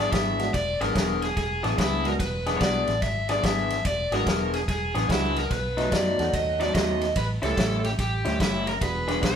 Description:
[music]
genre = electric blues shuffle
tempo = 145 BPM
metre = 4/4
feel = swing 65% on 8ths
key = E mixolydian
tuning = A4 = 439 Hz
[part]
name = raw garage guitar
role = melody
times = 0.0-9.4 s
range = E4 to E5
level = -28 LUFS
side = equal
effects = overdrive
[part]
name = electric guitar through a small old amp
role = riff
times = 0.0-9.4 s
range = A2 to G#4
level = -28 LUFS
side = left 2 dB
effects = none
[part]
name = vintage muted fingered electric bass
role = bass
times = 0.0-9.4 s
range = E1 to F#2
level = -30 LUFS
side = right 1 dB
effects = none
[part]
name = vintage drum kit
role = drums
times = 0.1-9.4 s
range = kick drum, ride cymbal, snare drum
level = -28 LUFS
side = equal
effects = none
[part]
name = clear upright piano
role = accompaniment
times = 0.4-9.4 s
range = G#3 to G#4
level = -33 LUFS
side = right 3 dB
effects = none
[sound]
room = moderate stone room reverb, RT60 1.0 s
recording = band playing live in one room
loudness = -22 LUFS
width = side -8 dB against mid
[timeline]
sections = 0.0-9.4 A section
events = none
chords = 0.0 E7; 5.5 B7; 7.2 A7; 8.8 E7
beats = 0.13 | 0.54 0.95 1.37 1.78 | 2.19 2.61 3.02 3.44 | 3.85 4.26 4.68 5.09 | 5.50 5.92 6.33 6.75 | 7.16 7.57 7.99 8.40 | 8.81 9.23

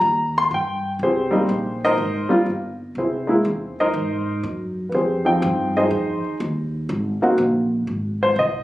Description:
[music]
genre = jazz piano trio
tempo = 122 BPM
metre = 4/4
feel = swing 68% on 8ths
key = Ab major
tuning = A4 = 439 Hz
[part]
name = warm baby grand piano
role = melody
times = 0.0-8.6 s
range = F3 to C6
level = -19 LUFS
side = equal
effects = none
[part]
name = upright bass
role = bass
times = 0.0-8.6 s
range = G1 to G#2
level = -26 LUFS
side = equal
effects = none
[sound]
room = moderate large studio reverb, RT60 1.3 s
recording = recorded on a phone in the room, club reverb, compression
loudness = -19 LUFS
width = side -16 dB against mid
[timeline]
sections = 1.0-8.6 A section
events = none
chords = 0.0 Eb; 1.0 Abmaj9; 3.0 C7alt; 4.9 Fm9; 6.9 Ab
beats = 0.01 0.50 | 0.99 1.48 1.98 2.47 | 2.96 3.45 3.94 4.43 | 4.92 5.41 5.90 6.39 | 6.89 7.38 7.87 8.36

